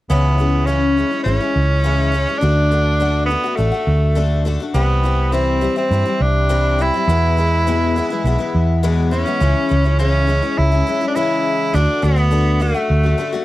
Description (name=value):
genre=folk rock and heartland rock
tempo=103 BPM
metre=4/4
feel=straight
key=unclear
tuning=A4 = 440 Hz
part: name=bright tenor saxophone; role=melody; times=0.1-13.4 s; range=A3 to E4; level=-19 LUFS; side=right 1 dB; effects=none
part: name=picked twelve-string acoustic guitar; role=accompaniment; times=0.1-13.4 s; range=E2 to F#4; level=-21 LUFS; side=left 5 dB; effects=none
part: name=hollow-body short-scale fingered electric bass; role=bass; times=0.1-13.1 s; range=G#1 to G2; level=-16 LUFS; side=right 1 dB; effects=none
room=little or no reverb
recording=dry, close 1970s-style studio recording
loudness=-14 LUFS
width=side -16 dB against mid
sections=0.1-9.4 A section; 9.4-13.4 B section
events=none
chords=0.1 C#m; 2.4 D; 4.8 C; 7.1 E; 9.4 C#m; 11.7 D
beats=| 0.10 0.68 1.26 1.85 | 2.43 3.01 3.59 4.17 | 4.75 5.34 5.92 6.50 | 7.08 7.66 8.24 8.83 | 9.41 9.99 10.57 11.15 | 11.73 12.32 12.90